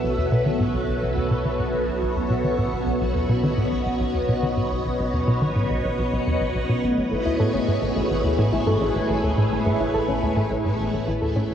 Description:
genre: ambient, sequencer-driven space music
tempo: 106 BPM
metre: 4/4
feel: straight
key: unclear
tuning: A4 = 439 Hz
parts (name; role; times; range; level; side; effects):
- string machine, full ensemble; sustained chords; 0.0-11.5 s; A3 to E5; -23 LUFS; equal; phaser, ensemble chorus, shimmer reverb
- tight sequencer bass; riff; 0.0-11.5 s; A1 to D#3; -25 LUFS; equal; analog chorus, ping-pong delay
- analog drone; bass; 0.0-11.5 s; A1 to B1; -32 LUFS; equal; chorus
- soft round pluck; arpeggios; 7.1-11.5 s; A2 to A4; -28 LUFS; left 2 dB; chorus, auto-pan, ping-pong delay, shimmer reverb
room: wet huge ambient reverb, RT60 7.3 s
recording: worn, warbling old tape, cassette tape, warbly pitch drift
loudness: -20 LUFS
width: side -9 dB against mid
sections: 0.0-11.5 A section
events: filter sweep on analog synth bass 0.0-11.5; fade-out 9.9-11.5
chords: 0.0 B7sus4; 6.8 Amaj7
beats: | 0.04 0.61 1.17 1.74 | 2.30 2.87 3.44 4.00 | 4.57 5.13 5.70 6.27 | 6.83 7.40 7.96 8.53 | 9.10 9.66 10.23 10.79 | 11.36

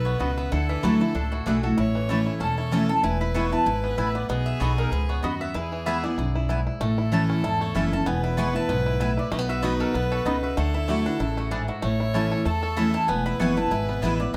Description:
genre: bluegrass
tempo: 191 BPM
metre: 4/4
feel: swing 55% on 8ths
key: E mixolydian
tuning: A4 = 440 Hz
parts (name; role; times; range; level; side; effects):
- mandolin; melody; 0.0-14.4 s; F#4 to C#6; -33 LUFS; equal; none
- clear fiddle; second line; 0.0-14.4 s; F#4 to C#5; -34 LUFS; equal; none
- picked steel-string acoustic guitar; accompaniment; 0.0-14.4 s; E2 to F#4; -29 LUFS; equal; none
- bluegrass banjo; arpeggios; 0.0-14.4 s; E3 to A4; -35 LUFS; equal; none
- upright bass; bass; 0.0-14.4 s; E1 to E2; -30 LUFS; equal; none
- mandolin; stabs; 0.2-14.1 s; A3 to B5; -34 LUFS; equal; none
room: moderate studio reverb, RT60 0.6 s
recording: none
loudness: -24 LUFS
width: mono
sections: 0.0-6.8 A section; 6.8-14.4 A section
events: none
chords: 0.0 B; 0.5 Dadd9; 1.8 A; 3.0 E; 4.3 B; 5.6 E; 6.8 A; 8.1 E; 9.3 B; 10.6 Dadd9; 11.8 A; 13.1 E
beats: 0.20 | 0.52 0.83 1.15 1.46 | 1.78 2.09 2.41 2.72 | 3.04 3.35 3.67 3.98 | 4.29 4.61 4.92 5.24 | 5.55 5.87 6.18 6.49 | 6.81 7.12 7.44 7.75 | 8.06 8.38 8.69 9.01 | 9.32 9.63 9.95 10.26 | 10.57 10.89 11.20 11.52 | 11.83 12.14 12.46 12.77 | 13.09 13.40 13.71 14.03 | 14.34

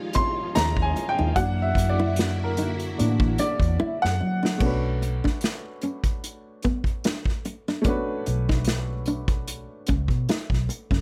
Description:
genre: R&B, neo-soul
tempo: 74 BPM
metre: 4/4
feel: swing 55% on 16ths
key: unclear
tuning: A4 = 441 Hz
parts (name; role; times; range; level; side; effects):
- warm upright piano; accompaniment; 0.0-11.0 s; Fb3 to C6; -30 LUFS; equal; none
- string machine, violins; sustained chords; 0.0-4.6 s; D3 to Ab5; -36 LUFS; equal; ensemble chorus
- unplugged drum kit; drums; 0.1-11.0 s; crash cymbal, hi-hat, kick drum, snare drum; -28 LUFS; equal; none
- nylon-string guitar; second line; 0.2-11.0 s; B3 to Gb4; -31 LUFS; equal; none
- vintage muted fingered electric bass; bass; 0.6-11.0 s; F#1 to Gb3; -28 LUFS; equal; none
room: light reverb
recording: none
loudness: -25 LUFS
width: mono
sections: 0.0-4.6 A section; 4.6-11.0 B section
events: upright piano solo 0.0-4.6; drum fill 3.8-4.6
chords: 0.0 Fm9; 1.4 Gb7b13; 4.6 Bm9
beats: 0.55 | 1.36 2.17 2.98 3.79 | 4.60 5.41 6.22 7.04 | 7.85 8.66 9.47 10.28

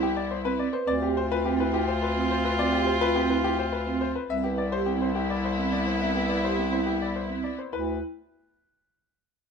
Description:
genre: classical, minimalist pattern music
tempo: 105 BPM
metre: 3/4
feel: straight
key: D dorian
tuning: A4 = 440 Hz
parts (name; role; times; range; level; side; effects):
- bright grand piano; melody; 0.0-8.0 s; G4 to E5; -31 LUFS; left 7 dB; none
- warm soprano saxophone; second line; 0.0-7.5 s; E4 to F4; -32 LUFS; right 4 dB; none
- rich symphonic string section; sustained chords; 0.0-7.5 s; B3 to F4; -34 LUFS; left 4 dB; none
- vibraphone with soft mallets; arpeggios; 0.0-8.0 s; C4 to B4; -29 LUFS; right 6 dB; none
- clear bass clarinet; bass; 0.0-8.0 s; C2 to D2; -30 LUFS; left 2 dB; none
room: light reverb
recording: close, detailed microphones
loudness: -24 LUFS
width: side -6 dB against mid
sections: 0.0-7.7 A section; 7.7-9.4 B section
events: none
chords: 0.0 Cmaj7; 0.9 Dm11; 4.3 Cmaj7; 7.7 Dsus2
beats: 0.30 | 0.87 1.44 2.01 | 2.59 3.16 3.73 | 4.30 4.87 5.44 | 6.01 6.59 7.16 | 7.73

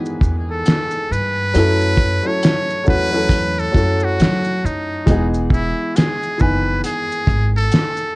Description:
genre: lo-fi hip hop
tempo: 68 BPM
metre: 4/4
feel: swing 61% on 16ths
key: E major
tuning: A4 = 439 Hz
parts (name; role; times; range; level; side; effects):
- dark upright piano; accompaniment; 0.0-8.2 s; D#3 to G#5; -22 LUFS; equal; cassette tape
- cloth-damped thuddy drum kit; drums; 0.1-8.1 s; hi-hat, kick drum, shaker, snare drum; -16 LUFS; equal; vintage 12-bit sampler grit
- upright bass; bass; 0.2-7.7 s; E1 to F#3; -20 LUFS; equal; none
- trumpet with metal mute; melody; 0.5-8.2 s; D#4 to C#5; -21 LUFS; equal; none
room: light reverb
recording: cassette tape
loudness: -15 LUFS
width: side -23 dB against mid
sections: 0.0-8.2 A section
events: none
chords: 0.0 Emaj7; 1.5 F#m7; 5.1 Emaj7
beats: 0.66 | 1.54 2.42 3.30 4.18 | 5.07 5.95 6.83 7.71

